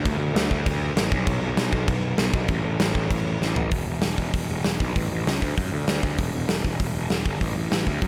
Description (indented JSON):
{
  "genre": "punk rock",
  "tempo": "195 BPM",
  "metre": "4/4",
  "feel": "straight",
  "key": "unclear",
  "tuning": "A4 = 440 Hz",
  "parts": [
    { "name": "fuzz picked electric bass", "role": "bass", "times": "0.0-8.1 s", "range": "E1 to F#2", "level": "-28 LUFS", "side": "equal", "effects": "overdrive" },
    { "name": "big rock drum kit", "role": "drums", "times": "0.1-8.1 s", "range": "crash cymbal, hi-hat, kick drum, snare drum, toms", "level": "-27 LUFS", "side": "equal", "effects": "none" }
  ],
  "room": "little or no reverb",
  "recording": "none",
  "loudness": "-24 LUFS",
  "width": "mono",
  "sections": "0.0-3.7 A section; 3.7-8.1 B section",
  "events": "drum fill 3.4-3.7",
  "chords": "none",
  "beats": "| 0.05 0.35 0.66 0.97 | 1.27 1.58 1.89 2.19 | 2.50 2.81 3.11 3.42 | 3.73 4.03 4.34 4.65 | 4.96 5.26 5.57 5.88 | 6.18 6.49 6.80 7.11 | 7.41 7.72 8.03"
}